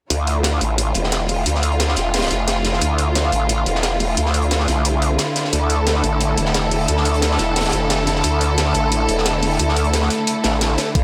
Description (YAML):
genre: dark technical drum and bass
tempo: 177 BPM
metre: 4/4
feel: straight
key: D minor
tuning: A4 = 440 Hz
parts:
  - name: clear symphonic string section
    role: sustained chords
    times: 0.1-11.0 s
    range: D3 to A4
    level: -23 LUFS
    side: equal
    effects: sidechain pumping
  - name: growl bass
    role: bass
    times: 0.1-11.0 s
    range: E1 to D2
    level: -22 LUFS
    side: equal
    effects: chorus, overdrive
  - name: crunchy breakbeat drum kit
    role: drums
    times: 0.1-11.0 s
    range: hi-hat, snare drum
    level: -27 LUFS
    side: equal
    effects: high-pass filter on hats, high-pass filter on snare, high-pass filter on room
  - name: electronic hi-hat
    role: drums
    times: 0.1-11.0 s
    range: none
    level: -26 LUFS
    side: equal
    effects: none
  - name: electronic kick drum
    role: drums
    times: 11.0 s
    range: none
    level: -17 LUFS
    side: equal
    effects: overdrive
room: light reverb, small room ambience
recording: none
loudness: -18 LUFS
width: mono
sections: 0.1-11.0 A section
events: none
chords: 0.1 Dm